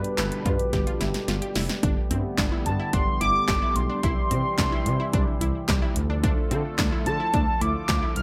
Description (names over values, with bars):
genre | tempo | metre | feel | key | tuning
synth-pop | 109 BPM | 4/4 | straight | unclear | A4 = 441 Hz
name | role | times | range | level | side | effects
warm velvety synth lead | melody | 0.0-8.2 s | B4 to F6 | -29 LUFS | equal | chorus
warm analog pad | sustained chords | 0.0-8.2 s | B2 to A4 | -34 LUFS | equal | chorus
unison pluck | arpeggios | 0.0-8.2 s | C4 to G4 | -36 LUFS | equal | tape echo
smooth gliding synth bass | bass | 0.0-8.2 s | F1 to D3 | -31 LUFS | equal | none
punchy analog drum machine | drums | 0.0-8.2 s | handclaps, hi-hat, kick drum, snare drum | -28 LUFS | equal | gated reverb
room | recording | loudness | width
light reverb | none | -24 LUFS | mono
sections
0.0-1.8 A section; 1.8-8.2 B section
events
drum fill 0.7-1.8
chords
0.0 G; 1.8 Gadd9; 4.0 C; 6.0 Dm